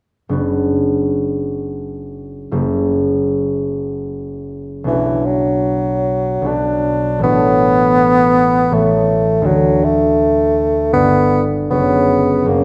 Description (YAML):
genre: classical, romantic duo for bassoon and harp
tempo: 72-84 BPM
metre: 3/4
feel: rubato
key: B minor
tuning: A4 = 442 Hz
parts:
  - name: concert harp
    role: accompaniment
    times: 0.3-12.6 s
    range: F#1 to F#5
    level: -19 LUFS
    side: equal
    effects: none
  - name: mellow bassoon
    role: melody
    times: 4.9-12.6 s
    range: E3 to D4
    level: -16 LUFS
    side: equal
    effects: none
room: wet scoring stage reverb, RT60 1.5 s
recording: none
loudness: -15 LUFS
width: mono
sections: 0.3-4.9 A section; 4.9-12.6 B section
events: none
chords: 0.3 Bm/F#; 2.5 F#7b9; 4.9 Bm; 7.2 A; 9.4 D; 10.9 G6; 11.7 F#5